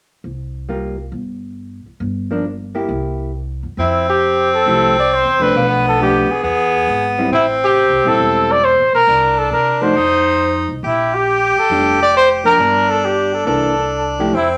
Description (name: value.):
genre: jazz, small-group swing and bop.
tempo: 136 BPM.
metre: 4/4.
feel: swing 68% on 8ths.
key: F major.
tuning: A4 = 440 Hz.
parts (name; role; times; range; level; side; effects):
upright bass; bass; 0.2-14.6 s; E1 to C3; -28 LUFS; equal; none.
vintage hollow-body jazz guitar; accompaniment; 0.7-14.3 s; E3 to G4; -23 LUFS; equal; none.
breathy trumpet; melody; 3.8-14.5 s; E4 to D5; -17 LUFS; equal; none.
edgy tenor saxophone; second line; 3.8-14.6 s; B3 to G4; -19 LUFS; equal; none.
room: wet studio reverb, RT60 0.6 s.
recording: none.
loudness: -15 LUFS.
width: mono.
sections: 0.2-3.8 A section; 3.8-14.6 B section.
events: none.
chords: 0.2 C7sus4; 2.0 Gm7; 2.9 C7; 3.8 Fmaj9; 5.5 Bm7b5; 6.4 E; 7.3 Am7; 9.1 Cmadd9; 10.0 F5; 10.8 Bb6; 12.6 G5; 13.5 C9.